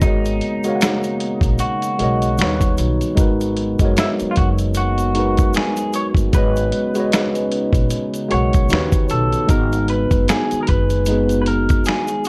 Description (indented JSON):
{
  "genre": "lo-fi hip hop",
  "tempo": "76 BPM",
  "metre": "4/4",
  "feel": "swing 59% on 16ths",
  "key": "G# minor",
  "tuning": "A4 = 440 Hz",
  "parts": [
    { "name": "electric guitar through a small old amp", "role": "melody", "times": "0.0-12.3 s", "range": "D#4 to C#5", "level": "-26 LUFS", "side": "equal", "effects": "low-pass filter" },
    { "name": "mellow tine electric piano", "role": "accompaniment", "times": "0.0-12.3 s", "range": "D#3 to F#5", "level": "-23 LUFS", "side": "equal", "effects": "overdrive, low-pass filter, plate reverb" },
    { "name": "dark analog pad", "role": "sustained chords", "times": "0.0-12.3 s", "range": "C#3 to F#4", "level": "-32 LUFS", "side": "equal", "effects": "none" },
    { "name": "upright bass", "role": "bass", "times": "0.0-11.8 s", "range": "F#1 to D#2", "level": "-24 LUFS", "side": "equal", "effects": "none" },
    { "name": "dusty soul sampler-style drum kit", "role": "drums", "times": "0.0-12.3 s", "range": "finger snaps, hi-hat, kick drum, snare drum", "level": "-21 LUFS", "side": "equal", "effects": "vintage 12-bit sampler grit" },
    { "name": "egg shaker", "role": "percussion", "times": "0.0-12.3 s", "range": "none", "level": "-40 LUFS", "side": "equal", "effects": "none" }
  ],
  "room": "light reverb",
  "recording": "dark, warm production",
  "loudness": "-18 LUFS",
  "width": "mono",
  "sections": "0.0-12.3 A section",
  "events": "none",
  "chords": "0.0 Bmaj9/G#; 2.4 D#7alt; 3.2 G#m7; 6.3 Bmaj9/G#; 8.7 D#7alt; 9.5 G#m7"
}